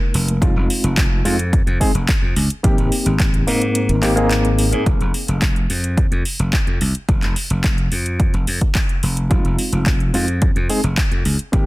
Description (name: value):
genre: nu-disco, nu disco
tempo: 108 BPM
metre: 4/4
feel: straight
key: F minor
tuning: A4 = 444 Hz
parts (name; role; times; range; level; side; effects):
- barky reed electric piano; accompaniment; 0.0-4.8, 9.3-11.7 s; Ab3 to Bb4; -21 LUFS; equal; fast tremolo, sidechain pumping, digital delay
- slap bass; bass; 0.1-11.6 s; F1 to Ab2; -20 LUFS; equal; none
- house drum kit; drums; 0.1-11.6 s; handclaps, hi-hat; -24 LUFS; equal; overdrive
- electronic kick drum; drums; 0.4-11.6 s; none; -18 LUFS; equal; overdrive
room: little or no reverb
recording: dense, heavily limited modern master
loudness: -15 LUFS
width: side -19 dB against mid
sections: 0.0-4.9 A section; 4.9-11.7 B section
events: drop 0.0-4.9; kick drops out 3.8-4.9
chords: 0.4 Dbmaj9/F (rootless); 2.6 Abmaj9; 4.9 F5; 9.3 Dbmaj9/F (rootless)